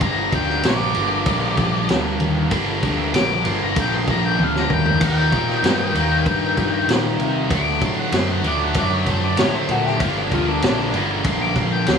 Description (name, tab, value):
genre	blues rock power trio and southern rock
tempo	96 BPM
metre	4/4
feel	straight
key	G minor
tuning	A4 = 441 Hz
part	octave-fuzz lead guitar	melody	0.0-12.0 s	D4 to D6	-24 LUFS	left 3 dB	distortion
part	distorted electric guitar	riff	0.0-12.0 s	G2 to Eb4	-22 LUFS	equal	overdrive
part	fuzz picked electric bass	bass	0.0-12.0 s	G1 to C3	-23 LUFS	equal	overdrive
part	vintage drum kit	drums	0.0-12.0 s	crash cymbal, kick drum, ride cymbal, snare drum, toms	-23 LUFS	equal	none
room	light reverb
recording	small room ambience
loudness	-17 LUFS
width	side -6 dB against mid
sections	0.0-12.0 A section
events	lead electric guitar solo 0.0-12.0; drum fill 4.4-5.0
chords	0.0 Gm; 5.0 Eb; 7.5 D; 10.0 Gm